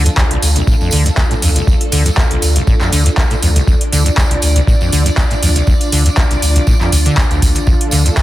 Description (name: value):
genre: acid house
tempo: 120 BPM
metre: 4/4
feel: swing 54% on 16ths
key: D minor pentatonic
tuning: A4 = 439 Hz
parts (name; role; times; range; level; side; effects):
- string machine, full ensemble; sustained chords; 0.0-8.2 s; D4 to D5; -21 LUFS; equal; ensemble chorus, sidechain pumping
- acid bass, saw; riff; 0.0-8.2 s; C2 to D3; -17 LUFS; equal; overdrive, lush chorus
- warm sub bass; bass; 0.0-8.1 s; D2; -13 LUFS; equal; sidechain pumping
- booming analog drum machine; drums; 0.1-8.2 s; handclaps, hi-hat; -19 LUFS; equal; overdrive
- tambourine; percussion; 0.1-8.2 s; none; -24 LUFS; right 2 dB; none
- electronic kick drum; drums; 0.2-8.2 s; none; -14 LUFS; equal; overdrive
room: digital ambience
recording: dense, heavily limited modern master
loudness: -10 LUFS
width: side -15 dB against mid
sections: 0.0-8.2 A section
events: none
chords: 0.0 Dm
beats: 0.17 0.67 1.17 | 1.67 2.17 2.67 3.17 | 3.67 4.17 4.67 5.17 | 5.67 6.17 6.67 7.17 | 7.67 8.17